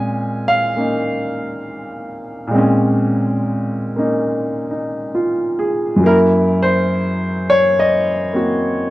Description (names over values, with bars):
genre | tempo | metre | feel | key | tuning
solo jazz | 69 BPM | 4/4 | swing 66% on 8ths | Bb minor | A4 = 437 Hz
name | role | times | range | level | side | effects
clear grand piano | solo | 0.0-8.9 s | Gb2 to Ab5 | -15 LUFS | equal | none
room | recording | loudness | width
light reverb | none | -15 LUFS | side -16 dB against mid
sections
0.0-8.9 A section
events
none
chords
0.0 Bbm9; 6.0 Gb7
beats
0.78 1.66 | 2.53 3.40 4.27 5.15 | 6.02 6.89 7.76 8.64